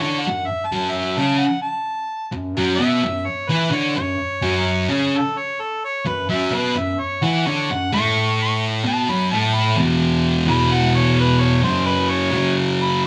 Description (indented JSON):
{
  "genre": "rock",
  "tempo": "129 BPM",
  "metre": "4/4",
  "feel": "straight",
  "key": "F# minor",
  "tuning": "A4 = 440 Hz",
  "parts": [
    { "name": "clear harmonica", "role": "melody", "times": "0.0-13.0 s", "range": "A4 to C#6", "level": "-25 LUFS", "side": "equal", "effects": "overdrive" },
    { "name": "thick fuzz guitar", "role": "riff", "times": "0.0-13.1 s", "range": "E2 to E4", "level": "-20 LUFS", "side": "equal", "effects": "distortion" }
  ],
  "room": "moderate large studio reverb, RT60 1.1 s",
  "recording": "band playing live in one room",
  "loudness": "-20 LUFS",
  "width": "mono",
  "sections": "0.0-9.8 A section; 9.8-13.1 B section",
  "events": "none",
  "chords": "0.0 F#m; 9.8 E5; 11.6 F#5"
}